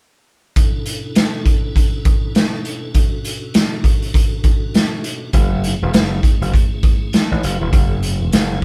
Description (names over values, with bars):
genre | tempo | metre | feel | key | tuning
funk | 100 BPM | 4/4 | swing 60% on 16ths | B dorian | A4 = 440 Hz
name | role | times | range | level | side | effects
tonewheel organ | sustained chords | 0.6-8.6 s | B2 to A4 | -32 LUFS | equal | slow rotary speaker, chorus vibrato
raw garage drum kit | drums | 0.6-8.6 s | hi-hat, kick drum, snare drum | -17 LUFS | equal | none
gritty slap bass | bass | 5.3-8.6 s | E1 to A1 | -21 LUFS | equal | overdrive
room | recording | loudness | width
light reverb | band playing live in one room | -17 LUFS | mono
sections
0.6-8.6 A section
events
none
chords
0.6 Bm11; 5.3 F#m7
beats
| 0.56 1.16 1.76 2.35 | 2.95 3.55 4.14 4.74 | 5.34 5.94 6.53 7.13 | 7.73 8.32